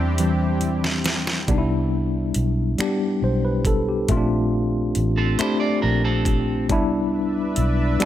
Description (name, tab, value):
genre	slow six-eight R&B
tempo	46 BPM (dotted quarters)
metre	6/8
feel	straight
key	unclear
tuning	A4 = 439 Hz
part	tine electric piano	accompaniment	0.0-8.1 s	E3 to D5	-22 LUFS	left 2 dB	overdrive, fast stereo tremolo
part	lush unison pad	sustained chords	0.0-1.5, 7.1-8.1 s	C4 to E5	-30 LUFS	right 1 dB	chorus
part	vintage muted fingered electric bass	bass	0.0-8.0 s	A1 to E2	-23 LUFS	equal	none
part	smooth R&B drum kit	drums	0.2-8.1 s	finger snaps, hi-hat, kick drum, snare drum	-24 LUFS	equal	none
part	electric guitar at the edge of break-up	second line	5.2-6.7 s	C4 to D5	-26 LUFS	right 2 dB	none
room	digital ambience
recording	none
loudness	-19 LUFS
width	side -12 dB against mid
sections	0.0-1.5 A section; 1.5-8.1 B section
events	tine electric piano solo 0.0-1.5; drum fill 0.2-1.5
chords	0.0 D9sus4; 1.5 Cmaj9; 4.1 Bbmaj9; 6.7 Cmaj9